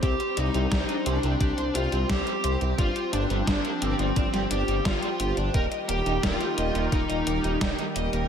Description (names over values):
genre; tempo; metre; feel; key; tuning
synthwave; 87 BPM; 4/4; straight; C minor; A4 = 439 Hz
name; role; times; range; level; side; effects
smooth overdriven lead guitar; melody; 0.0-7.6 s; C4 to Bb4; -29 LUFS; left 2 dB; ping-pong delay, slapback echo
lush unison pad; sustained chords; 0.0-8.3 s; Eb3 to G4; -31 LUFS; equal; chorus, phaser, sidechain pumping
overdriven semi-hollow guitar; riff; 0.0-8.3 s; G3 to Eb5; -34 LUFS; equal; lush chorus, ping-pong delay, slapback echo
dark detuned saw bass; bass; 0.0-8.3 s; Eb1 to C2; -28 LUFS; equal; sidechain pumping
electronic kick drum; drums; 0.0-7.8 s; none; -27 LUFS; equal; overdrive
gated 80s digital drum machine; drums; 0.0-8.3 s; hi-hat, snare drum; -31 LUFS; equal; gated reverb, gated reverb snare, overdrive
room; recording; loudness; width
moderate lush hall reverb, RT60 2.2 s; big arena sound; -23 LUFS; side -8 dB against mid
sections
0.0-8.3 A section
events
none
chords
0.0 Csus2; 2.8 G7sus4; 5.5 Eb